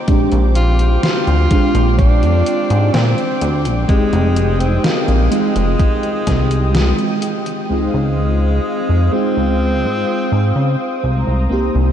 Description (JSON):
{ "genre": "vaporwave", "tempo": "63 BPM", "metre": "4/4", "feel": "straight", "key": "unclear", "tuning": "A4 = 439 Hz", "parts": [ { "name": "lush unison pad", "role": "sustained chords", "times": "0.0-11.9 s", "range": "Ab3 to Eb6", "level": "-26 LUFS", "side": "equal", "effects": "chorus" }, { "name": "FM electric piano with soft pad layer", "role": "accompaniment", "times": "0.1-11.9 s", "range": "Ab3 to G4", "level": "-20 LUFS", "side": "equal", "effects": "ensemble chorus, cassette tape, analog delay" }, { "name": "chorused synth bass", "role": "bass", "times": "0.1-11.9 s", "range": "F1 to Db3", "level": "-15 LUFS", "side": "equal", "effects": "none" }, { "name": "electronic kick drum", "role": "drums", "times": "0.1-6.5 s", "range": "none", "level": "-16 LUFS", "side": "equal", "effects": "overdrive, vintage 12-bit sampler grit" }, { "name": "gated 80s digital drum machine", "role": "drums", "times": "0.1-7.7 s", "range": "hi-hat, snare drum", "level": "-24 LUFS", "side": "equal", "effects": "gated reverb, gated reverb snare, overdrive, vintage 12-bit sampler grit" }, { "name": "breathy tenor saxophone", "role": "melody", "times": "0.6-11.0 s", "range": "Ab3 to F4", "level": "-21 LUFS", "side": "equal", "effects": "tape echo" } ], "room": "wet huge ambient reverb, RT60 7.3 s", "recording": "dreamy mix soaked in reverb, cassette tape", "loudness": "-13 LUFS", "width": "side -10 dB against mid", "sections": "0.0-7.7 A section; 7.7-11.9 B section", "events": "none", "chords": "0.0 Bb13; 3.9 Fm9; 7.7 Dbmaj9; 11.0 Cm7", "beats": "| 0.08 1.03 1.99 2.94 | 3.89 4.84 5.80 6.75 | 7.70 8.65 9.61 10.56 | 11.51" }